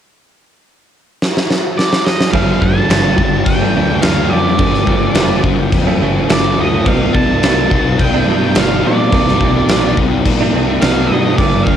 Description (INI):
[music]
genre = rock, shoegaze and dream pop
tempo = 106 BPM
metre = 4/4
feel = straight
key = G minor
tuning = A4 = 439 Hz
[part]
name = huge arena drum kit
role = drums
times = 1.2-11.8 s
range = crash cymbal, kick drum, snare drum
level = -15 LUFS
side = equal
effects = cassette tape
[part]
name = octave-fuzz lead guitar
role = melody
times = 1.8-11.8 s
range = D5 to A5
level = -20 LUFS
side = right 1 dB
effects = distortion, tape echo
[part]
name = warbly tape-like pad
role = sustained chords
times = 2.8-11.8 s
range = Eb4 to G5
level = -23 LUFS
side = equal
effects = chorus, built-in reverb, cassette tape
[part]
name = direct-recorded clean electric guitar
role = riff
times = 2.3-11.8 s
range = G2 to Eb4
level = -18 LUFS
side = right 9 dB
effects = reverse reverb, cassette tape
[part]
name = thick fuzz guitar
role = riff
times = 2.3-11.8 s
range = G2 to C4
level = -18 LUFS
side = left 8 dB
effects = distortion, ensemble chorus, cassette tape
[part]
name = fuzz fingered electric bass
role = bass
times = 2.3-11.8 s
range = F1 to Bb2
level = -19 LUFS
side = equal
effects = overdrive
[sound]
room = light reverb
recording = home recording on cassette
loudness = -11 LUFS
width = side -9 dB against mid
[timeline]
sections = 0.1-2.3 A section; 2.3-11.8 B section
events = drum fill 1.2-2.3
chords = 0.1 N.C.; 2.3 Gm7; 6.9 Cm11